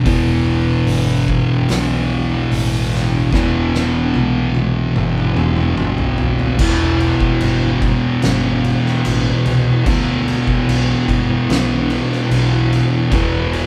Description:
stoner and doom metal; 74 BPM; 4/4; straight; E minor; A4 = 440 Hz
thick fuzz guitar; riff; 0.0-13.7 s; E2 to E3; -18 LUFS; equal; distortion
hollow-body short-scale fingered electric bass; bass; 0.1-13.6 s; E1 to D2; -24 LUFS; equal; overdrive
oversized low-tuned drum kit; drums; 0.1-13.7 s; crash cymbal, hi-hat, kick drum, snare drum, toms; -23 LUFS; equal
moderate studio ambience, RT60 0.5 s; band playing live in one room; -16 LUFS; mono
0.0-6.6 A section; 6.6-13.7 B section
drum fill 3.3-6.6
0.0 Em

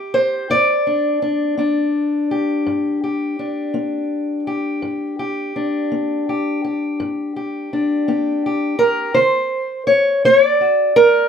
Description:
acoustic country blues, solo or duo; 55 BPM (dotted quarters); 12/8; straight; G major; A4 = 440 Hz
fingerpicked steel-string acoustic guitar; solo; 0.0-11.3 s; G2 to D5; -16 LUFS; equal
wet studio reverb, RT60 0.5 s; heard from further back in the room; -16 LUFS; side -7 dB against mid
0.0-11.3 A section
0.5 G; 9.2 D

